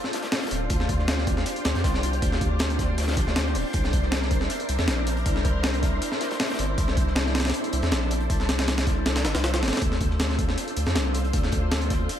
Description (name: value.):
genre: drum and bass, jungle.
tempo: 158 BPM.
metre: 4/4.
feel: straight.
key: D minor.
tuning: A4 = 441 Hz.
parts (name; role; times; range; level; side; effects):
soft string machine; sustained chords; 0.0-12.2 s; D4 to C5; -30 LUFS; equal; ensemble chorus.
jungle sampler-style drum kit; drums; 0.0-12.2 s; hi-hat, kick drum, snare drum; -25 LUFS; equal; overdrive.
crunchy breakbeat drum kit; drums; 0.1-12.2 s; hi-hat, snare drum; -39 LUFS; left 2 dB; none.
saturated sub bass; bass; 0.5-12.1 s; D1 to F2; -26 LUFS; equal; none.
room: little or no reverb.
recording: none.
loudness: -22 LUFS.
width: side -10 dB against mid.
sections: 0.0-12.2 A section.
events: none.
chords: 0.0 Dm7; 3.7 C9; 9.8 Dm7.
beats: 0.32 | 0.70 1.08 1.46 1.84 | 2.22 2.60 2.98 3.36 | 3.74 4.12 4.50 4.88 | 5.26 5.64 6.02 6.40 | 6.78 7.16 7.54 7.92 | 8.30 8.68 9.06 9.44 | 9.82 10.20 10.58 10.96 | 11.34 11.71 12.10.